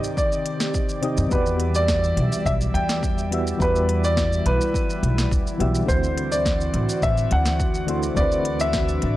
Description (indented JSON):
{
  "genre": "sunset chillout",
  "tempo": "105 BPM",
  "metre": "4/4",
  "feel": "straight",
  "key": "unclear",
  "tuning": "A4 = 441 Hz",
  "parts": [
    { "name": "soft electric-piano-like synth keys", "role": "accompaniment", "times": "0.0-9.2 s", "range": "C3 to E5", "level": "-28 LUFS", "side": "equal", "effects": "chorus, tremolo, auto-pan" },
    { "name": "airy breathy pad", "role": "sustained chords", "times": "0.0-9.2 s", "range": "Eb3 to E5", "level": "-28 LUFS", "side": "equal", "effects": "chorus, vintage 12-bit sampler grit" },
    { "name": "smooth R&B drum kit", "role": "drums", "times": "0.0-9.1 s", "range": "hi-hat, shaker, snare drum", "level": "-30 LUFS", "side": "equal", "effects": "overdrive" },
    { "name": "downlifter", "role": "sound effects", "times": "0.0-1.3 s", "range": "none", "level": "barely audible", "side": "none", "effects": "none" },
    { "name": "warm baby grand piano", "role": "melody", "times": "0.2-9.2 s", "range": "B4 to G5", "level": "-25 LUFS", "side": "equal", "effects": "tape echo" },
    { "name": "electronic kick drum", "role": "drums", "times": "0.2-8.9 s", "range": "none", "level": "-25 LUFS", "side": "equal", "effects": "overdrive" },
    { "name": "upright bass", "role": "bass", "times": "1.2-9.1 s", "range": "A1 to F#2", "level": "-24 LUFS", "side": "equal", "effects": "none" }
  ],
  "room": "digital ambience",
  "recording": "dry, gritty hardware recording, transformer saturation",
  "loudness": "-19 LUFS",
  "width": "side -15 dB against mid",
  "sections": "0.0-9.2 A section",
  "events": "none",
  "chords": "0.0 Cmadd9; 1.3 Em9; 5.9 D13",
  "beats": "0.17 0.74 | 1.31 1.89 2.46 3.03 | 3.60 4.17 4.74 5.32 | 5.89 6.46 7.03 7.60 | 8.17 8.74"
}